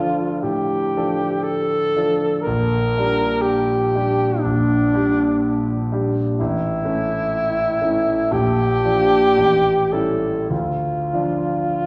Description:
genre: classical, romantic duo for alto saxophone and grand piano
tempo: 49-64 BPM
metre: 4/4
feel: rubato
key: D minor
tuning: A4 = 439 Hz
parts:
  - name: warm alto saxophone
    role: melody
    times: 0.0-11.9 s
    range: D4 to Bb4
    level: -22 LUFS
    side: equal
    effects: none
  - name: clear concert grand piano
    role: accompaniment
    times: 0.0-11.9 s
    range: A1 to A4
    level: -24 LUFS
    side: equal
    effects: none
room: wet recital hall reverb, RT60 1.4 s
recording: heard from further back in the room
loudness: -19 LUFS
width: mono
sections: 0.0-11.9 A section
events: none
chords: 0.0 Dm; 2.5 Gm/Bb; 6.4 A; 8.3 Bb; 9.4 A7; 10.5 Dm

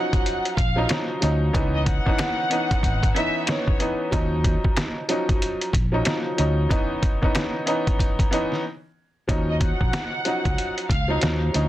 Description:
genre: hip hop, boom-bap hip-hop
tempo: 93 BPM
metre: 4/4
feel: swing 61% on 16ths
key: unclear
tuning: A4 = 441 Hz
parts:
  - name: warm studio violin section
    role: melody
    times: 0.0-3.8, 9.5-11.2 s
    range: Db5 to Gb5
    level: -28 LUFS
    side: equal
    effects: high-pass filter, low-pass filter, tape echo
  - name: clear upright piano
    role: accompaniment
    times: 0.0-11.7 s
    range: Fb3 to Eb4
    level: -25 LUFS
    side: equal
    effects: cassette tape, high-pass filter, low-pass filter
  - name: trip hop sampler-style drum kit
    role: drums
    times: 0.1-11.7 s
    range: hi-hat, kick drum, snare drum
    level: -23 LUFS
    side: equal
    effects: vintage 12-bit sampler grit
  - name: fingered electric bass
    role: bass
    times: 0.6-11.7 s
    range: Ab1 to Eb2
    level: -23 LUFS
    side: equal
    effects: none
  - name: finger snaps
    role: percussion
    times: 0.9-7.5 s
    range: none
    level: -34 LUFS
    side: left 8 dB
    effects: none
room: light reverb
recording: dense, heavily limited modern master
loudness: -20 LUFS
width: side -14 dB against mid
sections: 0.0-9.3 A section; 9.3-11.7 B section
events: break 8.6-9.3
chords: 0.0 Ebm9; 1.5 Dbm9; 4.1 Ebm9; 6.7 Dbm9; 9.3 Ebm9

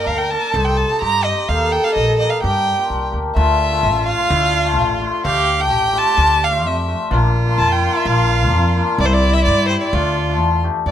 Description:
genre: klezmer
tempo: 128 BPM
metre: 2/4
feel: straight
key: G minor, D minor from 3.4 s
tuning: A4 = 439 Hz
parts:
  - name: rich violin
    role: melody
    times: 0.0-10.9 s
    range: C5 to Bb5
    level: -19 LUFS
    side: right 2 dB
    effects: plate reverb
  - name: rich violin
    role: second line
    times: 0.0-10.9 s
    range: E4 to Bb4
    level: -22 LUFS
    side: equal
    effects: none
  - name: cimbalom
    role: accompaniment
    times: 0.0-10.9 s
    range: G3 to A4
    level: -22 LUFS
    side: left 5 dB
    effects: none
  - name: upright bass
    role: bass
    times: 0.1-10.9 s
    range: A1 to G2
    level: -19 LUFS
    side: equal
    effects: none
room: light reverb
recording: close, detailed microphones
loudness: -14 LUFS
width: side -10 dB against mid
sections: 0.0-3.4 A section; 3.4-10.9 B section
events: none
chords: 0.0 Gm; 0.5 Cm; 1.5 Eb; 2.4 Gm; 3.4 Dm; 7.1 Bb; 9.0 C; 9.9 Dm

